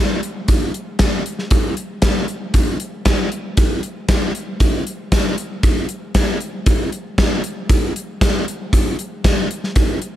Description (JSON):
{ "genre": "rock", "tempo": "116 BPM", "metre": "4/4", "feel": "straight", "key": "none", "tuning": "none", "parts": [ { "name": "gated 80s drum kit", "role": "drums", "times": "0.2-10.1 s", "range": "hi-hat, kick drum, snare drum", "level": "-16 LUFS", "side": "equal", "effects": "none" } ], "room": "moderate cathedral reverb, RT60 4.8 s", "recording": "none", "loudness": "-16 LUFS", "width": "side -12 dB against mid", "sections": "0.0-10.2 A section", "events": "none", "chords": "none", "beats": "| 0.49 1.00 1.52 2.03 | 2.54 3.06 3.58 4.09 | 4.60 5.12 5.63 6.15 | 6.66 7.18 7.70 8.21 | 8.73 9.24 9.76" }